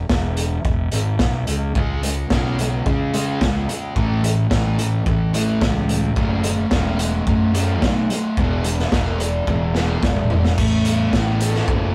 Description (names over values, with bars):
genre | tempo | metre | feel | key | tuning
indie rock | 109 BPM | 4/4 | straight | unclear | A4 = 440 Hz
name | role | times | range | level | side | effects
fuzz fingered electric bass | bass | 0.0-11.9 s | E1 to C#3 | -24 LUFS | equal | overdrive
raw garage drum kit | drums | 0.1-11.8 s | crash cymbal, hi-hat, kick drum, snare drum, toms | -24 LUFS | equal | none
fuzz guitar | riff | 1.8-11.9 s | A2 to A4 | -25 LUFS | equal | distortion
room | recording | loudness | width
light reverb | rough rehearsal-room recording, warm saturation | -20 LUFS | mono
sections
0.0-10.6 A section; 10.6-11.9 B section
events
drum fill 9.5-10.6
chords
0.0 E6; 1.8 C#5; 4.0 A; 6.2 F#m7; 8.4 E; 10.6 Asus2